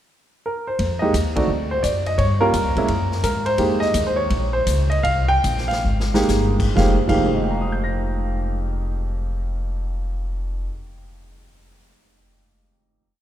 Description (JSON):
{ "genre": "jazz piano trio", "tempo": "121-172 BPM", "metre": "4/4", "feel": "swing 65% on 8ths", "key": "F minor", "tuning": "A4 = 441 Hz", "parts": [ { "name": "warm grand piano", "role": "melody", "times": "0.5-11.4 s", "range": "F2 to Bb6", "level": "-21 LUFS", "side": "right 1 dB", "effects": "none" }, { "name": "upright bass", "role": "bass", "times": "0.8-10.7 s", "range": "F1 to Ab2", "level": "-22 LUFS", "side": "equal", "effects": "none" }, { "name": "vintage drum kit", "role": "drums", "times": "0.8-7.2 s", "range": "crash cymbal, hi-hat, kick drum, ride cymbal, snare drum", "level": "-30 LUFS", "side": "left 2 dB", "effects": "none" } ], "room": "moderate cathedral reverb, RT60 5.0 s", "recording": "recorded in a church or concert hall", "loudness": "-18 LUFS", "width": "side -11 dB against mid", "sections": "0.0-0.8 pickup bar; 0.8-6.8 A section; 6.8-10.7 final chord", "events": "band accent 1.3; slowing down 3.6-6.8; drum fill 5.8-6.3", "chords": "0.0 N.C.; 0.8 F7(no3); 1.5 D; 2.2 Gm7b5; 2.9 Gbadd9; 3.6 Fm11" }